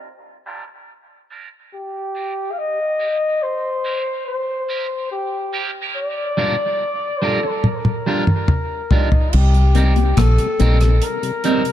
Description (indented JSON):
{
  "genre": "dub reggae",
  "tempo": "71 BPM",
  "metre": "4/4",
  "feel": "straight",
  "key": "C dorian",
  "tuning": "A4 = 439 Hz",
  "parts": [
    { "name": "electric guitar at the edge of break-up", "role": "accompaniment", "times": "0.5-11.6 s", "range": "G3 to Bb4", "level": "-24 LUFS", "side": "right 4 dB", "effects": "phaser, high-pass filter, low-pass filter, tape echo" },
    { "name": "mellow flugelhorn", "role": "melody", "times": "1.7-11.7 s", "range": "Eb4 to F5", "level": "-22 LUFS", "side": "left 2 dB", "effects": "low-pass filter, tape echo" },
    { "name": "damped 70s drum kit", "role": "drums", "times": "7.6-11.7 s", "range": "crash cymbal, hi-hat, kick drum, rim click, toms", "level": "-18 LUFS", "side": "equal", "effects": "none" },
    { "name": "deep dub fingered electric bass", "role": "bass", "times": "9.3-11.0 s", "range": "Bb1 to C2", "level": "-13 LUFS", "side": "equal", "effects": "none" },
    { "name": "mellow tonewheel organ", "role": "accompaniment", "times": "9.5-11.7 s", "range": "C3 to Eb4", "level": "-26 LUFS", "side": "left 5 dB", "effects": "chorus vibrato, slow rotary speaker, tape echo" },
    { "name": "electric guitar through a small old amp", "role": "arpeggios", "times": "9.7-10.7 s", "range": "Bb2 to C3", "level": "-26 LUFS", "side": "left 11 dB", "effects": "tremolo, tape echo" }
  ],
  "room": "light reverb, studio reverb",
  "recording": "echo-heavy mix",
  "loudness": "-16 LUFS",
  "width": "side -12 dB against mid",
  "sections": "0.0-9.3 A section; 9.3-11.7 B section",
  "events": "filter sweep 0.0-9.3; filter sweep on clean electric guitar 0.0-6.0; drum fill 7.6-9.3",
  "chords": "0.0 Gm7; 2.6 Cm7; 6.0 Gm7; 9.3 Cm7"
}